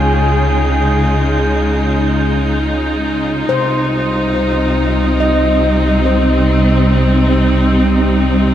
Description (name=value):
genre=ambient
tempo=free time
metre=none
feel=none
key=unclear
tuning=A4 = 440 Hz
part: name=warm flugelhorn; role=melody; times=0.0-2.6 s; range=Ab4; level=-21 LUFS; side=equal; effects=tape echo
part: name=rich studio string section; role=sustained chords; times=0.0-8.5 s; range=C3 to F4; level=-14 LUFS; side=equal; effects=none
part: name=handpan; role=arpeggios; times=0.0-8.5 s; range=C5 to G5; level=-21 LUFS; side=left 2 dB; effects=tape echo
part: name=warm sub bass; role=bass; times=0.0-8.5 s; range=C2 to Db2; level=-17 LUFS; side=equal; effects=none
part: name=wind-like tuned noise texture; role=texture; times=0.0-3.5 s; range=G6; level=-29 LUFS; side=right 2 dB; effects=built-in reverb
room=wet cathedral reverb, RT60 5.1 s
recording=in a vast, echoing space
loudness=-11 LUFS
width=side -11 dB against mid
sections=0.0-3.5 A section; 3.5-8.5 B section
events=none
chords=0.0 Db; 3.5 Cm